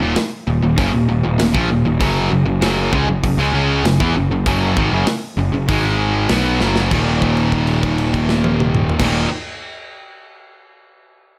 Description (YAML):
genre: heavy metal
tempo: 98 BPM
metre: 4/4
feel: straight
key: Eb minor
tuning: A4 = 440 Hz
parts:
  - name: distorted electric guitar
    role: riff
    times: 0.0-9.3 s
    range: Eb2 to Db4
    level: -23 LUFS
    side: equal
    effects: distortion
  - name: distorted electric guitar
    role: riff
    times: 0.0-9.3 s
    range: Eb2 to Db4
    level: -22 LUFS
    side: equal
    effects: overdrive
  - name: fuzz picked electric bass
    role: bass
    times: 0.0-9.3 s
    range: Eb1 to Fb2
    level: -22 LUFS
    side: equal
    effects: overdrive
  - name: tight metal drum kit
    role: drums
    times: 0.2-9.1 s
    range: crash cymbal, hi-hat, kick drum, snare drum, toms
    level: -24 LUFS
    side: equal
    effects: none
room: light reverb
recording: none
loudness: -17 LUFS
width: mono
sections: 0.0-6.9 A section; 6.9-9.4 B section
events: drum fill 6.6-6.9; held note 6.9-9.0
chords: 0.0 Ebm; 2.0 Gb5; 5.7 Ab5; 6.3 Gb5; 6.9 Eb5